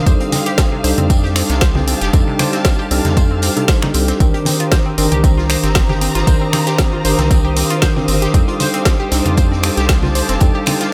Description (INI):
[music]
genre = deep house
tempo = 116 BPM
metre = 4/4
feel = swing 54% on 16ths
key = unclear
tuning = A4 = 440 Hz
[part]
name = warm analog pad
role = sustained chords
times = 0.0-10.9 s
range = A4 to F6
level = -30 LUFS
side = equal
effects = chorus, sidechain pumping
[part]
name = mellow tine electric piano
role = stabs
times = 0.0-10.9 s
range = Eb3 to Bb4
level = -22 LUFS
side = equal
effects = sidechain pumping, digital delay
[part]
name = warm studio string section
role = texture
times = 0.0-10.9 s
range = G4 to Bb5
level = -27 LUFS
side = equal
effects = sidechain pumping
[part]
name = analog pluck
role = arpeggios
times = 0.1-10.9 s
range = C3 to C5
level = -26 LUFS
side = equal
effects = chorus, sidechain pumping, digital delay
[part]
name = round analog bass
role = bass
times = 0.1-10.5 s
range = F1 to F2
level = -21 LUFS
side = equal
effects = sidechain pumping
[part]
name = deep house drum kit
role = drums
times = 0.1-10.9 s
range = finger snaps, hi-hat, snare drum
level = -22 LUFS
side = equal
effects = none
[part]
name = electronic kick drum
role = drums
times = 0.1-10.5 s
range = none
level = -16 LUFS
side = equal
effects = none
[part]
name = soft-mallet drum kit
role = drums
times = 0.1-10.9 s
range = hi-hat, snare drum, tambourine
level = -32 LUFS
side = equal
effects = sidechain pumping on hats, high-pass filter on hats, high-pass filter on snare, sidechain pumping on perc, high-pass filter on perc, high-pass filter on room
[part]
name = congas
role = percussion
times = 0.3-10.8 s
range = none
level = -25 LUFS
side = equal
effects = none
[sound]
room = light reverb, small room ambience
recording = none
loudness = -15 LUFS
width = mono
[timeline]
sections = 0.0-10.9 A section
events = none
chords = 0.1 F13; 4.2 Cm9; 8.3 F13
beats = | 0.07 0.58 1.10 1.62 | 2.13 2.65 3.17 3.69 | 4.20 4.72 5.24 5.75 | 6.27 6.79 7.31 7.82 | 8.34 8.86 9.38 9.89 | 10.41 10.93